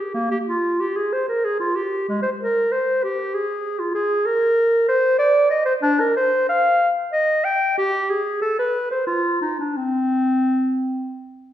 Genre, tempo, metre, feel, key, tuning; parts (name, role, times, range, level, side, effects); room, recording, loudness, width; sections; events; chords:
classical, baroque-style fantasia for unaccompanied clarinet; 94 BPM; 3/4; uneven beats, rubato; C minor from 4.0 s; A4 = 436 Hz
clear clarinet; solo; 0.0-11.1 s; Ab3 to G5; -18 LUFS; equal
wet recital hall reverb, RT60 1.5 s; heard from further back in the room; -18 LUFS; side -11 dB against mid
0.0-11.5 A section